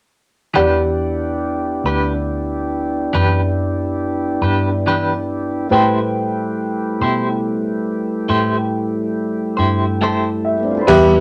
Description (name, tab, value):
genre	slow blues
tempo	46 BPM (dotted quarters)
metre	12/8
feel	straight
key	E minor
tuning	A4 = 437 Hz
part	clean electric guitar	accompaniment	0.5-11.1 s	E3 to C5	-21 LUFS	equal	tremolo
part	warm upright piano	accompaniment	0.6-11.2 s	G4 to A5	-22 LUFS	equal	none
part	mellow tonewheel organ	sustained chords	0.6-11.2 s	E3 to D5	-23 LUFS	equal	slow rotary speaker
part	vintage muted fingered electric bass	bass	0.6-11.2 s	D2 to B2	-24 LUFS	equal	none
part	compact cocktail drum kit	drums	10.9-11.1 s	crash cymbal, kick drum	-25 LUFS	equal	none
room	wet studio reverb, RT60 0.5 s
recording	none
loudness	-18 LUFS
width	mono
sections	0.6-10.9 A section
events	upright piano fill 9.6-10.9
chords	0.6 Em7; 5.7 Am7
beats	| 0.56 1.85 3.14 4.43 | 5.72 7.01 8.30 9.59 | 10.88